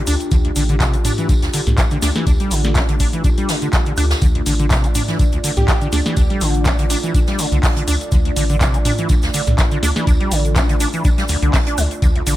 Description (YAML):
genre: acid house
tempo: 123 BPM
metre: 4/4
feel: swing 54% on 16ths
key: D minor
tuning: A4 = 440 Hz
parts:
  - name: dark analog pad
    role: sustained chords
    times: 0.0-12.4 s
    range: A3 to F5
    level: -25 LUFS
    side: equal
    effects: chorus, phaser, vintage 12-bit sampler grit, sidechain pumping
  - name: deep acid bass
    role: riff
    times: 0.0-12.3 s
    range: D2 to D4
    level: -22 LUFS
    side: equal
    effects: overdrive, ensemble chorus, cassette tape, tape echo
  - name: round analog bass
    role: bass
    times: 0.1-12.4 s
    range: A1 to D2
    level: -19 LUFS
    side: equal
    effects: sidechain pumping
  - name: booming analog drum machine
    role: drums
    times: 0.1-12.4 s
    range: handclaps, hi-hat, snare drum, toms, woodblock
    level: -23 LUFS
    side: left 1 dB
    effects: small room ambience
  - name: jazz brush drum kit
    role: drums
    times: 0.1-12.4 s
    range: hi-hat, snare drum, tambourine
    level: -30 LUFS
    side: right 1 dB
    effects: sidechain pumping on hats, high-pass filter on hats, small room ambience, high-pass filter on snare, sidechain pumping on perc, high-pass filter on perc, high-pass filter on room
  - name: egg shaker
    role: percussion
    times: 0.1-12.4 s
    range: none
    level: -31 LUFS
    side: right 3 dB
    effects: none
  - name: electronic kick drum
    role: drums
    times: 0.3-12.1 s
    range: none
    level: -17 LUFS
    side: equal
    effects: small room ambience
  - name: airy dreamy lead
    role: melody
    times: 5.6-5.8 s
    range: G4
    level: -28 LUFS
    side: right 1 dB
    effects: chorus, digital delay
room: studio reverb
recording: none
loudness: -14 LUFS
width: side -14 dB against mid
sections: 0.0-12.4 A section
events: none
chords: 0.0 Dm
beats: | 0.32 0.80 1.29 1.78 | 2.27 2.75 3.24 3.73 | 4.22 4.71 5.19 5.68 | 6.17 6.66 7.15 7.63 | 8.12 8.61 9.10 9.59 | 10.07 10.56 11.05 11.54 | 12.02